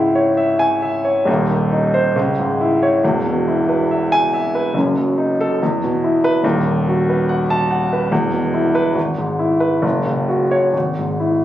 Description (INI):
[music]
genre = classical, romantic character piece for solo piano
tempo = 70 BPM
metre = 2/4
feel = uneven beats, rubato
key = E major from 6.4 s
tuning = A4 = 440 Hz
[part]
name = warm grand piano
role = solo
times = 0.0-11.4 s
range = Eb1 to A5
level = -15 LUFS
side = equal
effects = none
[sound]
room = light reverb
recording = recorded on a phone in the room, club reverb, compression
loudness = -15 LUFS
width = side -12 dB against mid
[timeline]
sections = 0.0-11.4 A section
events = none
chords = 0.0 C#m; 1.3 Cm/Eb; 2.2 C#m; 3.0 E; 4.8 D#dim/F#; 5.6 E5; 6.4 B7/D#; 8.1 E5; 9.0 E/G#; 9.8 F#5; 10.7 E/G#